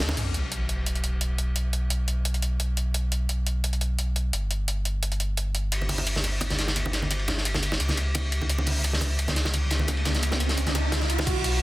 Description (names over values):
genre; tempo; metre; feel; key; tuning
liquid drum and bass; 173 BPM; 4/4; straight; unclear; A4 = 441 Hz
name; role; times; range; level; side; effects
warm sub bass; bass; 0.0-11.6 s; G1 to D#2; -26 LUFS; equal; tube saturation
breakbeat sampler-style drum kit; drums; 0.0-11.5 s; crash cymbal, hi-hat, ride cymbal, snare drum; -31 LUFS; equal; none
crunchy breakbeat drum kit; drums; 0.0-0.2, 5.7-11.5 s; hi-hat, ride cymbal, snare drum; -30 LUFS; equal; high-pass filter on cymbals, high-pass filter on hats, high-pass filter on snare, high-pass filter on room
congas; percussion; 0.1-0.2, 5.8-11.3 s; none; -33 LUFS; right 1 dB; none
sub drop and riser; sound effects; 0.2-1.6, 9.6-11.3 s; none; -33 LUFS; right 1 dB; none
dark concert grand piano; melody; 11.3-11.6 s; F#4; -39 LUFS; right 1 dB; dub echo
electronic kick drum; drums; 11.3 s; none; -30 LUFS; equal; none
room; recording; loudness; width
studio reverb; dense, heavily limited modern master; -24 LUFS; side -18 dB against mid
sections
0.2-11.3 A section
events
drum fill 0.0; band accent 0.1; impact 0.2-1.6; riser 9.6-11.3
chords
none